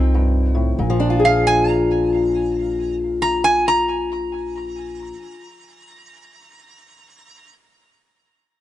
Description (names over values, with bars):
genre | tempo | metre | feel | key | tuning
acoustic country blues, solo or duo | 91 BPM | 4/4 | swing 62% on 8ths | Bb mixolydian | A4 = 441 Hz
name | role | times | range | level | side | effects
fingerpicked old ladder-braced acoustic guitar | accompaniment | 0.0-5.6 s | F2 to A4 | -20 LUFS | left 3 dB | none
upright bass | bass | 0.0-5.1 s | Bb1 to C2 | -22 LUFS | right 1 dB | none
metal-body resonator slide guitar | melody | 1.2-7.5 s | F5 to Bb5 | -19 LUFS | right 1 dB | plate reverb, tape echo
room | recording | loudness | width
moderate studio reverb, RT60 0.8 s | nothing above 10.9 kHz | -16 LUFS | side -13 dB against mid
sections
0.8-6.1 A section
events
none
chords
0.0 F7; 0.8 Bb7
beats
0.16 | 0.79 1.45 2.11 2.77 | 3.42 4.08 4.74 5.40